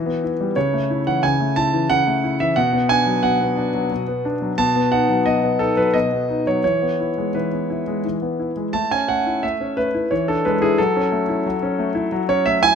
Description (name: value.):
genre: classical-period piano sonatina.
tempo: 89 BPM.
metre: 3/4.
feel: straight.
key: A major.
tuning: A4 = 440 Hz.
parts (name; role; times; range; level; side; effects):
clear grand piano; solo; 0.0-12.8 s; B2 to A5; -17 LUFS; equal; none.
room: moderate recital hall reverb, RT60 1.5 s.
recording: close, detailed microphones.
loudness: -17 LUFS.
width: side -7 dB against mid.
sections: 0.0-8.7 A section; 8.7-12.8 B section.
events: none.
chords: 0.0 Em; 0.6 A/C#; 2.6 Bm; 4.6 B; 6.6 E; 8.7 A; 10.1 E7; 10.8 F#m7.